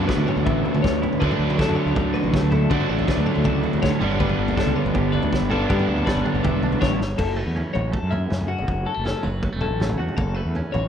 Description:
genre	math rock and midwest emo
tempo	160 BPM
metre	4/4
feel	straight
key	unclear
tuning	A4 = 440 Hz
part	twelve-string electric guitar	accompaniment	0.0-10.9 s	D2 to G4	-30 LUFS	right 5 dB	tremolo
part	twelve-string electric guitar	arpeggios	0.0-10.9 s	F#4 to E5	-30 LUFS	left 8 dB	none
part	overdriven electric guitar	riff	0.0-7.0 s	G2 to D4	-22 LUFS	equal	none
part	fuzz fingered electric bass	bass	0.0-10.9 s	E1 to D3	-25 LUFS	equal	overdrive
part	loose indie drum kit	drums	0.1-10.8 s	crash cymbal, kick drum, snare drum, toms	-26 LUFS	equal	none
room	light reverb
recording	rough home demo mix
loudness	-19 LUFS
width	side -8 dB against mid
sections	0.0-7.2 A section; 7.2-10.9 B section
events	drum fill 7.0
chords	0.0 Bm11; 4.0 G6; 7.2 F#m7

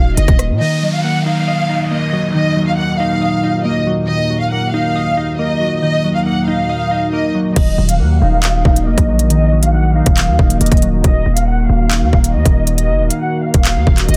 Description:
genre	hip hop, drill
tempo	138 BPM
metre	4/4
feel	half-time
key	Eb minor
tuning	A4 = 440 Hz
part	warm symphonic violin section	melody	0.0-14.2 s	Eb5 to Gb5	-22 LUFS	equal	low-pass filter
part	deep dark ambient pad	sustained chords	0.0-14.2 s	Eb2 to Gb4	-25 LUFS	equal	chorus, built-in reverb
part	hard-hitting 808-style bass	bass	0.0-0.6, 7.6-14.2 s	Eb1 to Bb2	-17 LUFS	equal	none
part	drill drum kit	drums	0.2-0.5, 7.6-14.2 s	crash cymbal, handclaps, hi-hat, kick drum, rim click	-16 LUFS	equal	none
part	glassy digital keys	accompaniment	0.6-11.1 s	Eb3 to Eb5	-20 LUFS	equal	chorus, low-pass filter
part	downlifter	sound effects	0.6-4.1 s	none	-31 LUFS	equal	none
room	light reverb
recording	dense, heavily limited modern master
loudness	-15 LUFS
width	mono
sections	0.6-7.6 A section; 7.6-14.2 B section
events	filter sweep 7.6-14.2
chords	0.0 Ebm

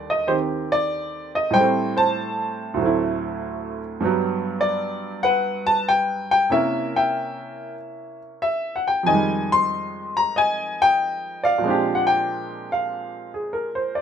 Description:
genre	solo jazz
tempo	95 BPM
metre	4/4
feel	swing 68% on 8ths, rubato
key	unclear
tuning	A4 = 440 Hz
part	clear baby grand piano	solo	0.0-14.0 s	D2 to C6	-20 LUFS	equal	none
room	light reverb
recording	minimal, uncompressed stereo recording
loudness	-20 LUFS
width	side -8 dB against mid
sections	0.0-14.0 A section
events	none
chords	0.0 Ebmaj7; 1.5 Am7; 2.8 D9; 4.0 Gmaj7; 6.5 C7b9; 9.1 Fm9; 11.6 Bb13

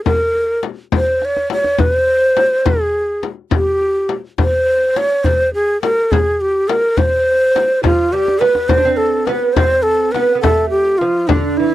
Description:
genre	Persian modal ensemble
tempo	69 BPM (dotted quarters)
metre	6/8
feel	straight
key	C dastgah homayun, C dastgah mahur from 8.7 s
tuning	A4 = 438 Hz
part	breathy ney	melody	0.0-11.7 s	D4 to Db5+47c	-14 LUFS	equal	none
part	frame drum	percussion	0.1-11.4 s	none	-21 LUFS	left 8 dB	none
part	tombak	percussion	0.1-11.7 s	none	-19 LUFS	equal	none
part	lute	second line	7.8-11.7 s	D3 to D4	-20 LUFS	right 8 dB	none
room	little or no reverb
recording	dry, close 1970s-style studio recording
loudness	-13 LUFS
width	side -14 dB against mid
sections	0.0-8.7 A section; 8.7-11.7 B section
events	drum fill 1.2-1.8, 8.1-8.7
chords	none

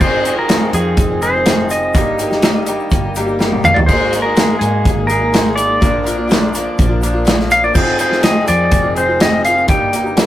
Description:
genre	folk rock and heartland rock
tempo	124 BPM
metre	4/4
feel	straight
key	F dorian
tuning	A4 = 440 Hz
part	clean lap steel guitar	melody	0.0-10.3 s	Ab4 to G5	-16 LUFS	equal	none
part	picked swing-style acoustic guitar	accompaniment	0.0-10.3 s	F2 to Ab4	-23 LUFS	left 2 dB	none
part	electric guitar through a small old amp	riff	0.0-10.3 s	G2 to Bb4	-20 LUFS	equal	none
part	hollow-body short-scale picked electric bass	bass	0.0-10.3 s	F1 to Ab2	-22 LUFS	equal	none
part	natural country drum kit	drums	0.0-10.3 s	crash cymbal, hi-hat, kick drum, snare drum, toms	-15 LUFS	equal	none
part	egg shaker	percussion	0.0-10.3 s	none	-35 LUFS	right 3 dB	none
room	moderate small room ambience, RT60 0.5 s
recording	rough rehearsal-room recording, warm saturation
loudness	-12 LUFS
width	side -13 dB against mid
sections	0.0-10.3 A section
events	drum fill 3.4-3.9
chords	0.0 Fm7; 1.9 Eb/G; 3.9 Absus2; 5.8 Bb; 7.8 Fm7; 9.7 Eb/G

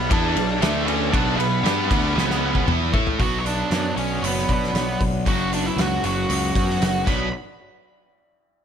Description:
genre	quiet-loud alternative rock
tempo	116 BPM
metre	4/4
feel	straight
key	B minor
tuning	A4 = 440 Hz
part	octave-fuzz lead guitar	melody	0.0-7.3 s	A3 to B5	-26 LUFS	right 3 dB	distortion, slapback echo
part	heavy high-gain guitar	riff	0.0-3.2 s	B2 to A4	-29 LUFS	equal	distortion
part	overdriven semi-hollow guitar	riff	0.0-7.3 s	F#2 to A4	-29 LUFS	left 12 dB	none
part	overdriven semi-hollow guitar	riff	0.0-7.3 s	F#2 to A4	-28 LUFS	right 13 dB	none
part	fuzz picked electric bass	bass	0.0-7.3 s	F#1 to B2	-26 LUFS	left 1 dB	overdrive
part	loose indie drum kit	drums	0.1-7.2 s	crash cymbal, hi-hat, kick drum, ride cymbal, snare drum, toms	-24 LUFS	left 1 dB	none
part	electric guitar through a small old amp	arpeggios	3.2-7.3 s	F#2 to C#5	-31 LUFS	left 2 dB	none
room	small room ambience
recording	none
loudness	-19 LUFS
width	side -8 dB against mid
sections	0.0-3.2 A section; 3.2-7.3 B section; 7.3-8.6 C section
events	drum fill 2.2-3.2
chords	0.0 Bm; 0.6 D5; 1.1 Bm; 2.2 C#5; 2.7 Esus4; 3.2 Bmadd9; 5.3 F#sus4; 7.1 Bmadd9; 7.3 N.C.

